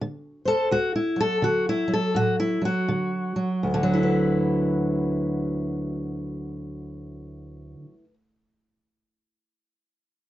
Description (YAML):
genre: acoustic country blues, solo or duo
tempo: 78-86 BPM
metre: 4/4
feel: swing 62% on 8ths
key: D major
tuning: A4 = 440 Hz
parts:
  - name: fingerpicked steel-string acoustic guitar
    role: solo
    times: 0.0-8.1 s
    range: D2 to C5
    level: -23 LUFS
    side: equal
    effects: none
room: light reverb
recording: dark, warm production, nothing above 7.7 kHz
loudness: -22 LUFS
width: side -14 dB against mid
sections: 0.0-3.6 A section; 3.6-6.7 B section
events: slowing down 0.0-3.6; steel-string acoustic guitar solo 0.0-3.6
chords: 0.0 D; 3.6 D69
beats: 0.02 | 0.72 1.43 2.15 2.89 | 3.65 4.42 5.18 5.95